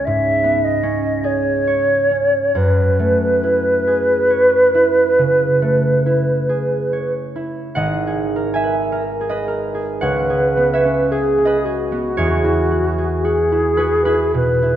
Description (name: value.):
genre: classical, impressionist duo for flute and harp.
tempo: 44-56 BPM.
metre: 4/4.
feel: rubato.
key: F# dorian.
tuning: A4 = 440 Hz.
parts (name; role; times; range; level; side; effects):
mellow hollow silver concert flute; melody; 0.0-14.8 s; F#4 to E5; -16 LUFS; equal; none.
concert harp; accompaniment; 0.0-14.8 s; G#1 to G#5; -19 LUFS; right 1 dB; none.
room: wet concert hall reverb, RT60 2.0 s.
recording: none.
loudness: -14 LUFS.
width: side -11 dB against mid.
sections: 0.0-7.8 A section; 7.8-14.8 B section.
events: none.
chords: 0.0 C#5; 2.6 F#m11; 7.8 G#m11; 10.0 C#m7; 12.2 E69.